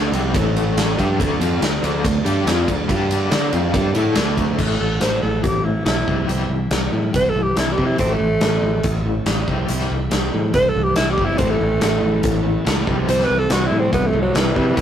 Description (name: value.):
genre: classic rock.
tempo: 141 BPM.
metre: 4/4.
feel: straight.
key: unclear.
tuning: A4 = 436 Hz.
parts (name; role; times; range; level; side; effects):
bright tonewheel organ; sustained chords; 0.0-14.8 s; G3 to D5; -36 LUFS; right 1 dB; none.
overdriven electric guitar; riff; 0.0-14.8 s; A2 to D5; -28 LUFS; right 5 dB; spring reverb.
raw garage guitar; riff; 0.0-14.8 s; A2 to D5; -26 LUFS; left 5 dB; overdrive, tremolo.
raw garage guitar; riff; 0.0-4.6, 11.4-14.8 s; A2 to D5; -25 LUFS; equal; overdrive.
modern bright picked electric bass; bass; 0.0-14.8 s; G1 to D3; -22 LUFS; equal; none.
big rock drum kit; drums; 0.1-14.8 s; crash cymbal, hi-hat, kick drum, ride cymbal, snare drum; -22 LUFS; equal; none.
raspy tenor saxophone; melody; 4.8-14.8 s; E3 to C5; -21 LUFS; right 1 dB; tape echo.
room: light reverb.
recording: rough rehearsal-room recording.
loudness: -16 LUFS.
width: side -9 dB against mid.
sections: 0.0-4.6 A section; 4.6-14.8 B section.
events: tenor saxophone solo 4.6-14.8.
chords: 0.0 A; 1.2 D5; 2.9 G5; 3.3 D5; 4.6 A; 6.1 C; 8.0 A; 9.5 C; 11.4 A; 12.9 C.